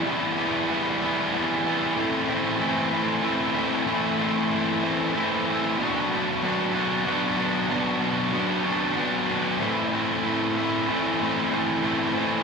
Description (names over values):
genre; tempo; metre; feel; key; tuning
rock; 63 BPM (dotted quarters); 6/8; straight; A dorian; A4 = 440 Hz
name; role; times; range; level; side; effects
fuzz guitar; solo; 0.0-12.4 s; A2 to F#4; -22 LUFS; equal; distortion
room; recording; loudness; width
wet recital hall reverb, RT60 1.6 s; recorded in a church or concert hall; -22 LUFS; side -5 dB against mid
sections
0.0-12.4 A section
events
none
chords
0.0 Em; 2.0 Am; 5.8 Bm; 9.6 Am